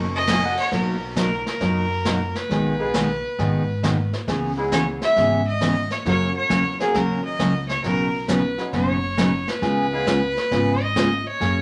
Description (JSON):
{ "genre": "country, western swing", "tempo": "135 BPM", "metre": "4/4", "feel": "swing 67% on 8ths", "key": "B major", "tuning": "A4 = 435 Hz", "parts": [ { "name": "bright upright piano", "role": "accompaniment", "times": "0.0-10.1 s", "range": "F#3 to C#6", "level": "-30 LUFS", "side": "equal", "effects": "none" }, { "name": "picked steel-string acoustic guitar", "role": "accompaniment", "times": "0.0-11.6 s", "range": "B2 to B4", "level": "-25 LUFS", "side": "equal", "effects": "none" }, { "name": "upright bass", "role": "bass", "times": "0.0-11.6 s", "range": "F#1 to G#2", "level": "-31 LUFS", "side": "equal", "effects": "none" }, { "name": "clear fiddle", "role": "melody", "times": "0.2-11.6 s", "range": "G#4 to E5", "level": "-26 LUFS", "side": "equal", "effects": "none" }, { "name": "jazz brush drum kit", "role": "drums", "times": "0.3-11.6 s", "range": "brushed snare drum, hi-hat, kick drum, ride cymbal, snare drum", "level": "-31 LUFS", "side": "equal", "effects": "none" } ], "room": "wet studio reverb, RT60 0.7 s", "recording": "none", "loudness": "-22 LUFS", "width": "mono", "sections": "0.7-11.6 A section", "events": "none", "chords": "0.0 Bmaj7; 2.5 G#m/B; 4.3 C#m7; 6.1 F#; 7.8 Badd9; 9.6 C#7" }